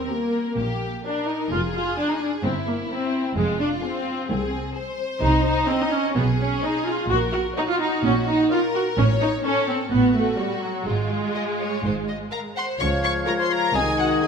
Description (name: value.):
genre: cinematic, playful, whimsical film cue.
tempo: 128 BPM.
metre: 4/4.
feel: straight.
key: Db major from 5.2 s.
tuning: A4 = 441 Hz.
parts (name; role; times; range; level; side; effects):
rich studio violin section; second line; 0.0-14.3 s; E4 to Eb5; -29 LUFS; left 2 dB; none.
rich studio viola section; accompaniment; 0.0-14.3 s; Gb3 to Gb4; -23 LUFS; right 1 dB; none.
warm studio violin section; melody; 0.1-14.3 s; G4 to Db6; -28 LUFS; left 5 dB; none.
dark studio cello section; bass; 0.6-14.1 s; C2 to Db3; -28 LUFS; right 2 dB; none.
rich studio double bass section; bass; 0.6-14.1 s; F1 to Db2; -28 LUFS; right 2 dB; none.
dark cor anglais; second line; 12.8-14.3 s; Eb5 to F5; -30 LUFS; right 2 dB; none.
silver concert flute; second line; 12.8-14.3 s; Ab6; -30 LUFS; left 2 dB; none.
warm clarinet; second line; 12.8-14.3 s; Db5 to Eb5; -31 LUFS; left 3 dB; none.
dark bassoon; accompaniment; 12.8-14.3 s; Eb3 to F3; -27 LUFS; equal; none.
dark French horn section; sustained chords; 12.8-14.3 s; Ab3 to F4; -28 LUFS; left 6 dB; none.
room: moderate scoring stage reverb, RT60 1.7 s.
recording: none.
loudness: -20 LUFS.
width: side -6 dB against mid.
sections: 0.0-12.8 A section; 12.8-14.3 B section.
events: none.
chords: 0.0 Eb; 1.5 Fm; 2.4 C7/G; 3.4 Fm; 5.2 Ab/C; 6.2 Db5/Cb; 7.1 Gb/Bb; 9.0 A; 10.9 Db/Ab; 12.8 Db; 13.7 Ab/C.